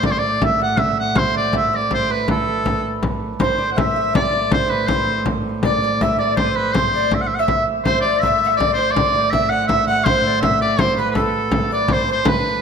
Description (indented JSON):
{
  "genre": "medieval dance",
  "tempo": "162 BPM",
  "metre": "3/4",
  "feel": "straight",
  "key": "A dorian",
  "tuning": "A4 = 440 Hz",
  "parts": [
    { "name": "bright shawm", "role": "melody", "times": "0.0-12.6 s", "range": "A4 to F#5", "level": "-20 LUFS", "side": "equal", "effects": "none" },
    { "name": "hammered dulcimer", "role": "second line", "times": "0.0-12.6 s", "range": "A4 to F#5", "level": "-24 LUFS", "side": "right 8 dB", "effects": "none" },
    { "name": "warm viola da gamba", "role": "drone", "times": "0.0-12.6 s", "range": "A2", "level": "-26 LUFS", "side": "right 2 dB", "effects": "none" },
    { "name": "frame drum", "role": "percussion", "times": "0.0-12.5 s", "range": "none", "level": "-22 LUFS", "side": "left 2 dB", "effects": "none" },
    { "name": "breathy alto recorder", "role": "second line", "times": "3.4-12.6 s", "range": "A4 to F#5", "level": "-24 LUFS", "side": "left 5 dB", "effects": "none" }
  ],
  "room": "moderate recital hall reverb, RT60 1.4 s",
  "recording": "none",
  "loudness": "-16 LUFS",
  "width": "side -6 dB against mid",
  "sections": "0.0-3.4 A section; 3.4-12.3 A section",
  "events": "none",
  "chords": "none"
}